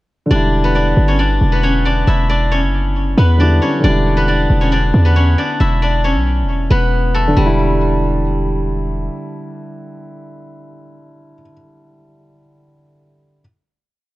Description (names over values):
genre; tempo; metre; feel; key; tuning
hip hop, trap; 136 BPM; 4/4; half-time; E dorian; A4 = 440 Hz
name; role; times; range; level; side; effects
steel-string zither; melody; 0.3-10.9 s; G3 to E5; -18 LUFS; left 2 dB; low-pass filter, tape echo
felt-muted upright piano; accompaniment; 0.3-13.4 s; D3 to E4; -21 LUFS; equal; low-pass filter
hard-hitting 808-style bass; bass; 0.3-9.1 s; E1 to E2; -14 LUFS; equal; none
room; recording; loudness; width
small room ambience; echo-heavy mix; -12 LUFS; side -18 dB against mid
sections
0.3-7.4 breakdown; 7.4-10.9 final chord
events
none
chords
0.3 Em7